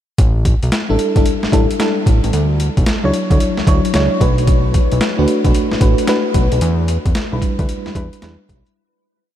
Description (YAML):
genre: R&B, new jack swing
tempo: 112 BPM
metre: 4/4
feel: swing 64% on 16ths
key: E dorian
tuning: A4 = 443 Hz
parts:
  - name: fat analog bass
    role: bass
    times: 0.2-8.6 s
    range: G1 to E2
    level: -17 LUFS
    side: equal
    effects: none
  - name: boom bap sampler-style drum kit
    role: drums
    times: 0.2-8.8 s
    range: hi-hat, kick drum, snare drum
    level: -16 LUFS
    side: equal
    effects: overdrive
  - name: FM electric piano with tremolo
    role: accompaniment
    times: 0.9-8.8 s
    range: F#3 to C#5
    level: -18 LUFS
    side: equal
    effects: phaser
room: light reverb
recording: none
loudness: -13 LUFS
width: side -11 dB against mid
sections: 0.2-8.8 verse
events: fade-out 6.6-8.8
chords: 0.2 A7sus4; 2.3 Dmaj9; 4.2 Bm7; 6.6 Em7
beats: | 0.18 0.72 1.26 1.79 | 2.33 2.86 3.40 3.94 | 4.47 5.01 5.54 6.08 | 6.61 7.15 7.68 8.22